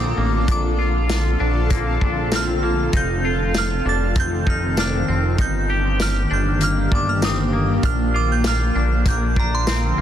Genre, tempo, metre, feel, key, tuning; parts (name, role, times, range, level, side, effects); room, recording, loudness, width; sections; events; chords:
dream pop; 98 BPM; 4/4; straight; Bb major; A4 = 438 Hz
glassy synth bell; melody; 0.0-10.0 s; Bb5 to A6; -26 LUFS; right 3 dB; chorus, phaser, tape echo
granular cloud pad; sustained chords; 0.0-10.0 s; D3 to A4; -24 LUFS; equal; built-in reverb
twangy electric guitar; arpeggios; 0.0-10.0 s; Bb3 to G4; -27 LUFS; left 4 dB; wide subtle chorus, tape echo
chorused synth bass; bass; 0.0-10.0 s; F1 to Bb1; -21 LUFS; equal
vibraphone with hard mallets; texture; 0.1-8.1 s; C4 to G4; -34 LUFS; left 1 dB
vintage drum kit; drums; 0.5-9.8 s; hi-hat, kick drum, snare drum, tambourine; -23 LUFS; equal
light reverb, small room ambience; dense, heavily limited modern master; -17 LUFS; side -10 dB against mid
0.0-10.0 A section
0.0 Bbmaj7; 2.9 F7; 5.4 Ebmaj7/G; 7.8 Bb